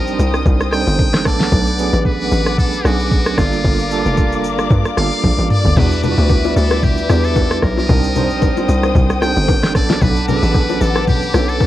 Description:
amapiano; 113 BPM; 4/4; swing 55% on 16ths; A4 = 440 Hz
trumpet with metal mute; melody; 0.0-11.7 s; F4 to G5; -23 LUFS; equal; cassette tape, tape echo
tine electric piano; accompaniment; 0.0-11.7 s; F#3 to C5; -21 LUFS; right 7 dB; medium tremolo, cassette tape
warm studio string section; sustained chords; 0.0-11.7 s; Bb3 to Eb6; -23 LUFS; left 5 dB; sidechain pumping, cassette tape
tight log drum bass; bass; 0.0-11.7 s; F1 to G2; -18 LUFS; equal
smooth R&B drum kit; drums; 0.1-11.7 s; crash cymbal, hi-hat, kick drum, rim click, shaker, snare drum, toms; -17 LUFS; equal
congas and bongos; percussion; 5.8-11.7 s; -22 LUFS; left 7 dB
little or no reverb; home recording on cassette; -13 LUFS; side -14 dB against mid
0.0-11.7 A section
drum fill 5.2-5.8
0.0 Cm7; 1.3 Bm7; 3.4 Gm7; 5.8 Em7; 7.9 Cm7; 9.8 Bm7

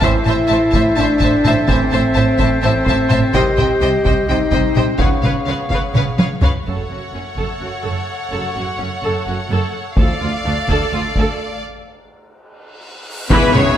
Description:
cinematic, epic orchestral film score; 253 BPM (eighths); 7/8; straight; F# minor from 6.7 s; A4 = 440 Hz
warm symphonic violin section; melody; 0.0-13.8 s; E5 to A5; -27 LUFS; left 4 dB
clear symphonic violin section; second line; 0.0-13.8 s; B4 to E5; -25 LUFS; left 2 dB
rich symphonic viola section; accompaniment; 0.0-13.8 s; C#3 to C5; -24 LUFS; right 1 dB
clear trombone section; sustained chords; 0.0-10.1, 13.3-13.8 s; A2 to C4; -28 LUFS; right 4 dB
clear woodwind section; sustained chords; 0.0-13.8 s; G#3 to F#5; -25 LUFS; equal
mellow French horn section; sustained chords; 0.0-10.1, 13.3-13.8 s; A3 to G4; -18 LUFS; left 2 dB
rich symphonic cello section; bass; 0.0-13.6 s; C#2 to C#3; -24 LUFS; right 2 dB
rich symphonic double bass section; bass; 0.0-13.6 s; F#1 to D2; -23 LUFS; right 3 dB
taiko ensemble; drums; 0.0-13.8 s; -19 LUFS; equal
cymbal swell and tam-tam; percussion; 10.0-13.8 s; -28 LUFS; left 1 dB
cymbal swell and sub drop; sound effects; 12.7-13.8 s; -29 LUFS; equal
mellow concert flute; second line; 13.3-13.8 s; B4 to C#5; -22 LUFS; left 2 dB
dark trumpet section; stabs; 13.3-13.8 s; B4 to C#5; -21 LUFS; right 1 dB
moderate scoring stage reverb, RT60 1.5 s; -14 LUFS; side -10 dB against mid
0.0-6.7 A section; 6.7-13.3 B section
drum fill 5.9-6.7, 12.6-13.3; break 11.6-13.3; cymbal swell 12.7-13.3; band accent 13.3-13.8; impact 13.3-13.8
0.0 Am; 3.3 Cm; 5.0 C#7; 6.7 F#m; 10.0 Dm

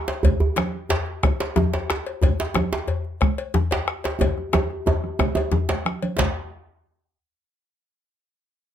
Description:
west african traditional, West African drum ensemble; 121 BPM (dotted quarters); 12/8; straight
cowbell; percussion; 0.1-6.3 s; -31 LUFS; left 7 dB
djembe; percussion; 0.1-6.3 s; -24 LUFS; right 2 dB
bombo; percussion; 0.2-6.3 s; -22 LUFS; left 2 dB
congas; percussion; 0.2-6.3 s; -27 LUFS; right 5 dB
djembe; percussion; 0.2-6.3 s; -26 LUFS; left 3 dB
light reverb; close, detailed microphones; -20 LUFS; side -10 dB against mid
0.0-6.2 A section; 6.2-8.2 B section
drum fill 4.2-6.2

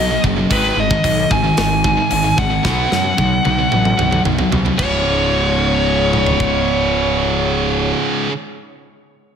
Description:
heavy metal; 112 BPM; 4/4; straight; A4 = 443 Hz
high-gain lead guitar; melody; 0.0-7.9 s; B4 to G#5; -18 LUFS; left 1 dB; distortion, digital delay
heavy high-gain guitar; riff; 0.0-8.3 s; C#2 to B3; -20 LUFS; right 11 dB; distortion, slapback echo
high-gain distorted guitar; riff; 0.0-8.3 s; C#2 to B3; -22 LUFS; left 11 dB; distortion
fuzz picked electric bass; bass; 0.0-7.9 s; C#1 to F#2; -21 LUFS; equal; overdrive
tight metal drum kit; drums; 0.2-6.5 s; crash cymbal, hi-hat, kick drum, snare drum, toms; -21 LUFS; equal
moderate lush hall reverb, RT60 2.3 s; big arena sound; -14 LUFS; side -7 dB against mid
0.0-4.8 A section; 4.8-9.1 B section
drum fill 2.6-4.8
0.0 B; 0.5 G#5; 2.6 B5; 4.8 C#5

